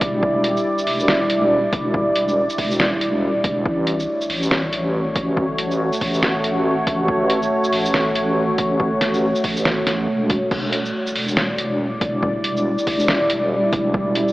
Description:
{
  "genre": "deep dubstep",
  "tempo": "140 BPM",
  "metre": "4/4",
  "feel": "swing 59% on 16ths, half-time",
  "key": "E dorian",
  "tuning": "A4 = 440 Hz",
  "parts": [
    { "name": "deep dark ambient pad", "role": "sustained chords", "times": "0.0-14.3 s", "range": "G3 to E5", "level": "-20 LUFS", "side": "equal", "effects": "chorus, built-in reverb" },
    { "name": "deep soft wobble bass", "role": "bass", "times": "0.0-14.3 s", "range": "E1 to A1", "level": "-24 LUFS", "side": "equal", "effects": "chorus" },
    { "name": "electronic kick drum", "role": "drums", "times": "0.0-14.0 s", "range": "none", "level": "-26 LUFS", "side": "equal", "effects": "overdrive, small room ambience" },
    { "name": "trip hop sampler-style drum kit", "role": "drums", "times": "0.0-14.3 s", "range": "crash cymbal, hi-hat, shaker, snare drum", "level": "-24 LUFS", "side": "equal", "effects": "small room ambience" }
  ],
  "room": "wet cathedral reverb, RT60 6.0 s",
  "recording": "dreamy mix soaked in reverb, AM radio sound",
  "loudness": "-17 LUFS",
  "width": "side -18 dB against mid",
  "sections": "0.0-14.3 A section",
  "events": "none",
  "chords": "0.0 Em7; 3.7 A6; 10.5 Em7"
}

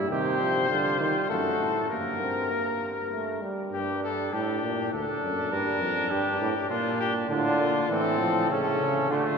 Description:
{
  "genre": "classical, imitative canzona for brass ensemble",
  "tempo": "100 BPM",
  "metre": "3/4",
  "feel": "straight",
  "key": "G minor",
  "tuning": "A4 = 438 Hz",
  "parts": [
    { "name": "warm trumpet", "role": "second line", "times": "0.0-9.4 s", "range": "A3 to Bb4", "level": "-30 LUFS", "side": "right 3 dB", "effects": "none" },
    { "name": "bright trombone", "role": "accompaniment", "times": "0.0-3.7, 7.3-9.2 s", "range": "A2 to C4", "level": "-30 LUFS", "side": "right 1 dB", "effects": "none" },
    { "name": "warm bass trombone", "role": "bass", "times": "0.0-9.4 s", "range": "D2 to Eb3", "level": "-30 LUFS", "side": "right 1 dB", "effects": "none" },
    { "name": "clear trumpet", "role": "melody", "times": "0.1-9.4 s", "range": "F4 to C5", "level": "-30 LUFS", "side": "left 7 dB", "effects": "none" }
  ],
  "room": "wet cathedral reverb, RT60 5.1 s",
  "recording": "minimal, uncompressed stereo recording",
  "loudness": "-24 LUFS",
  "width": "side -5 dB against mid",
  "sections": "0.0-3.7 A section; 3.7-9.4 B section",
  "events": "none",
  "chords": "0.1 Cm; 1.3 F#m; 1.9 Gm; 4.9 D; 5.5 Gm; 6.7 Gm/Bb; 7.3 Dm/A; 8.5 A"
}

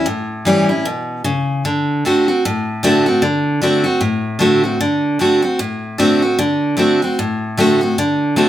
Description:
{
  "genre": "rock",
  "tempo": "152 BPM",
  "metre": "4/4",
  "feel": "swing 59% on 8ths",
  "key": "D mixolydian",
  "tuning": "A4 = 436 Hz",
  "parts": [
    { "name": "picked steel-string acoustic guitar", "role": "solo", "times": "0.0-8.5 s", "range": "A2 to F#4", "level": "-14 LUFS", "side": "equal", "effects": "none" }
  ],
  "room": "moderate large studio reverb, RT60 1.0 s",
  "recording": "band playing live in one room",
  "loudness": "-14 LUFS",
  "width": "side -12 dB against mid",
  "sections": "0.0-4.8 A section; 4.8-8.5 B section",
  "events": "none",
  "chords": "0.0 A7; 1.6 D7"
}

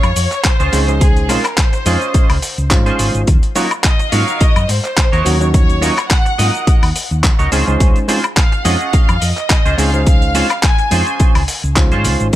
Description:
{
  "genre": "nu-disco, nu disco",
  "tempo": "106 BPM",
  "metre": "4/4",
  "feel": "swing 55% on 16ths",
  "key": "unclear",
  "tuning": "A4 = 440 Hz",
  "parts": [
    { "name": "rich studio violin section", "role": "melody", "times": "0.0-12.4 s", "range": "Ab4 to Ab5", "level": "-21 LUFS", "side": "left 1 dB", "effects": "vintage 12-bit sampler grit, ping-pong delay" },
    { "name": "clean electric guitar", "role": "riff", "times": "0.0-12.3 s", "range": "Db4 to Eb5", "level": "-21 LUFS", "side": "right 3 dB", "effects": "analog chorus" },
    { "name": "hollow-body short-scale fingered electric bass", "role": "bass", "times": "0.0-12.4 s", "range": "Ab1 to Ab2", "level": "-17 LUFS", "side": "equal", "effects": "none" },
    { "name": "dusty soul sampler-style drum kit", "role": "drums", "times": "0.0-12.4 s", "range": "handclaps, hi-hat, shaker, woodblock", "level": "-19 LUFS", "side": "left 1 dB", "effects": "none" },
    { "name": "electronic kick drum", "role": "drums", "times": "0.4-12.4 s", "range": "none", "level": "-12 LUFS", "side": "equal", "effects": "none" },
    { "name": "overdriven reed electric piano", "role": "accompaniment", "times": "0.7-12.3 s", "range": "Gb3 to C5", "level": "-20 LUFS", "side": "right 1 dB", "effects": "ping-pong delay" }
  ],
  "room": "digital ambience",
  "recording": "none",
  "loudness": "-11 LUFS",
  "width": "side -14 dB against mid",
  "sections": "0.0-12.4 A section",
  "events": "none",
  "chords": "0.0 Dbmaj7; 3.3 Ebm7; 7.5 Dbmaj7"
}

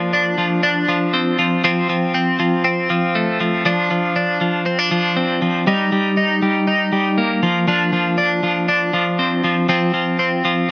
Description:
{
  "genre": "indie pop",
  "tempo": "119 BPM",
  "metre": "4/4",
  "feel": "straight",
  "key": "unclear",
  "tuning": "A4 = 439 Hz",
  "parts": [
    { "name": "twelve-string electric guitar", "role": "solo", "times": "0.0-10.7 s", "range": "F3 to Eb4", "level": "-15 LUFS", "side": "equal", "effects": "harmonic tremolo" }
  ],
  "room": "little or no reverb",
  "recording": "recorded outdoors, with no room sound",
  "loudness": "-15 LUFS",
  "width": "side -26 dB against mid",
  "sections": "0.0-10.7 A section",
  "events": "none",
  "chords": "0.0 Dm7/F; 1.6 F; 3.7 Dm7/F; 5.7 Eb; 7.4 Dm7/F; 9.7 F5"
}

